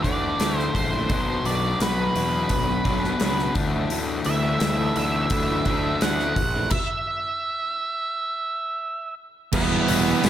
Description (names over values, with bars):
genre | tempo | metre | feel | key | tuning
quiet-loud alternative rock | 85 BPM | 4/4 | straight | unclear | A4 = 440 Hz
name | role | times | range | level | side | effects
octave-fuzz lead guitar | melody | 0.0-10.3 s | B3 to F#5 | -26 LUFS | right 2 dB | distortion
electric guitar through a small old amp | arpeggios | 0.0-6.7 s | E3 to F#4 | -32 LUFS | right 4 dB | phaser, tape echo
fuzz guitar | riff | 0.0-10.3 s | B2 to E4 | -26 LUFS | left 5 dB | distortion
fuzz picked electric bass | bass | 0.0-10.3 s | E1 to E2 | -28 LUFS | equal | overdrive
big rock drum kit | drums | 0.0-10.3 s | crash cymbal, hi-hat, kick drum, snare drum | -27 LUFS | equal | none
thick fuzz guitar | riff | 9.5-10.3 s | E3 to E4 | -23 LUFS | right 12 dB | distortion
room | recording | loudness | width
light reverb, small room ambience | none | -21 LUFS | side -11 dB against mid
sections
0.0-9.5 A section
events
stop 6.7-9.5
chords
0.0 Dsus2; 1.1 Bm; 3.6 Dsus2; 6.7 N.C.; 9.5 Em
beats
0.40 | 1.10 1.80 2.50 3.21 | 3.91 4.61 5.31 6.02 | 6.72 7.42 8.13 8.83 | 9.53 10.24